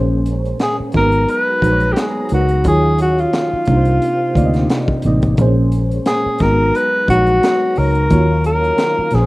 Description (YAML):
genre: R&B, neo-soul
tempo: 88 BPM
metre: 4/4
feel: swing 54% on 16ths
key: unclear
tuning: A4 = 440 Hz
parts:
  - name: mellow FM electric piano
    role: accompaniment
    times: 0.0-9.3 s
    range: Bb2 to Eb5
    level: -19 LUFS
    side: equal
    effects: chorus, phaser
  - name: tonewheel organ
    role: sustained chords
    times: 0.0-9.3 s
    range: C3 to Bb5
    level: -28 LUFS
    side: equal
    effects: slow rotary speaker, chorus vibrato
  - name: vintage muted fingered electric bass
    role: bass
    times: 0.0-9.3 s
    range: Ab1 to Eb2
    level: -16 LUFS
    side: equal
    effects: none
  - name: crunchy breakbeat drum kit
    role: drums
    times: 0.3-9.3 s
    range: hi-hat, kick drum, snare drum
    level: -22 LUFS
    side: equal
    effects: none
  - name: breathy tenor saxophone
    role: melody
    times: 0.6-9.3 s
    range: F4 to Cb5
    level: -16 LUFS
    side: equal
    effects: none
room: light reverb, small room ambience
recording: rough home demo mix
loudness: -13 LUFS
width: side -20 dB against mid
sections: 0.0-9.3 A section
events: none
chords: 0.0 Bbm9; 0.9 Abm9; 2.7 Ebm9; 3.7 Cm9; 5.4 Bbm9; 6.4 Abm9; 8.1 Ebm9